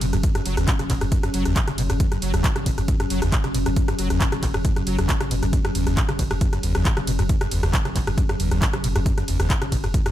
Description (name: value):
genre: driving peak-time techno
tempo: 136 BPM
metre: 4/4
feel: straight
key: unclear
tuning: A4 = 441 Hz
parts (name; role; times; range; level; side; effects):
- acid bass, saw; riff; 0.0-10.1 s; E2 to F#3; -26 LUFS; equal; ensemble chorus, cassette tape, sidechain pumping
- saturated sub bass; bass; 0.0-9.9 s; F#1; -26 LUFS; equal; tube saturation, sidechain pumping, low-pass filter
- deep dark ambient pad; drone; 0.0-10.1 s; F#3 to C#4; -29 LUFS; left 1 dB; chorus, built-in reverb, sidechain pumping
- techno drum kit; drums; 0.0-10.1 s; handclaps, hi-hat, ride cymbal, rim click; -27 LUFS; equal; none
- electronic kick drum; drums; 0.2-10.0 s; none; -22 LUFS; equal; none
room: light reverb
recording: none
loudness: -19 LUFS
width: side -12 dB against mid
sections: 0.0-10.1 A section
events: none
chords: 0.0 F#5